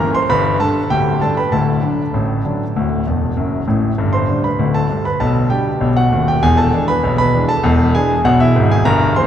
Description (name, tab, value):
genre	ragtime piano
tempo	98 BPM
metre	2/4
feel	straight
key	G major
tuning	A4 = 440 Hz
part	clear grand piano	solo	0.0-9.3 s	D1 to C6	-13 LUFS	equal	none
room	wet cathedral reverb, RT60 5.0 s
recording	recorded in a church or concert hall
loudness	-13 LUFS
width	side -10 dB against mid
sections	0.0-9.3 A section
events	grand piano fill 3.1-4.0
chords	0.3 G; 1.5 D; 4.0 G; 5.2 G/B; 6.4 E7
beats	| 0.30 0.91 | 1.52 2.14 | 2.76 3.38 | 3.99 4.60 | 5.21 5.82 | 6.43 7.04 | 7.65 8.26 | 8.87